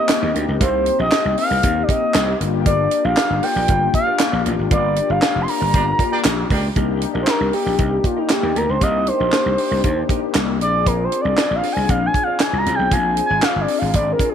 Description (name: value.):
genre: early-eighties boogie funk.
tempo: 117 BPM.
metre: 4/4.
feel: straight.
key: C minor.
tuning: A4 = 444 Hz.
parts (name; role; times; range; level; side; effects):
expressive synth lead; melody; 0.0-14.3 s; Eb4 to C6; -20 LUFS; equal; chorus, tape echo.
mellow synth brass; accompaniment; 0.0-14.3 s; Bb3 to Ab4; -24 LUFS; left 13 dB; chorus.
mellow electric guitar; riff; 0.0-14.3 s; F4 to F5; -31 LUFS; right 13 dB; wide subtle chorus.
tight funk drum kit; drums; 0.1-14.3 s; handclaps, hi-hat, kick drum, snare drum; -20 LUFS; right 1 dB; none.
gritty slap bass; bass; 0.2-14.1 s; F1 to Eb2; -22 LUFS; right 1 dB; overdrive.
mellow horn section; second line; 5.7-6.7 s; Bb3 to D5; -27 LUFS; right 1 dB; none.
room: light reverb, small room ambience.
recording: 1960s-style stereo with parts hard left and right.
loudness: -16 LUFS.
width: side -8 dB against mid.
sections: 0.0-6.8 A section; 6.8-14.3 B section.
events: band accent 4.7-6.8; analog synth lead solo 6.8-14.3.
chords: 0.0 Cm7; 2.4 Gm7; 6.8 Cm7; 10.6 Bb7.